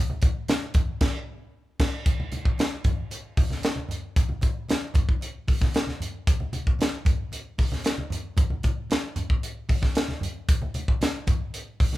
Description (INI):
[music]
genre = funk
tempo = 114 BPM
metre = 4/4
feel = straight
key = none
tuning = none
[part]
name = congas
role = percussion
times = 0.1-12.0 s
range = none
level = -32 LUFS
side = right 1 dB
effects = none
[part]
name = crisp fusion drum kit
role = drums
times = 0.2-12.0 s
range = crash cymbal, hi-hat, kick drum, snare drum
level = -23 LUFS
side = equal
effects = none
[sound]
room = light reverb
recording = band playing live in one room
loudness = -23 LUFS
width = side -16 dB against mid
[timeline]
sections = 0.0-2.1 A section; 2.1-12.0 B section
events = band accent 1.0-2.1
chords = none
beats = 0.49 1.01 1.54 | 2.06 2.59 3.12 3.64 | 4.17 4.70 5.22 5.75 | 6.27 6.80 7.33 7.85 | 8.38 8.91 9.43 9.96 | 10.49 11.01 11.54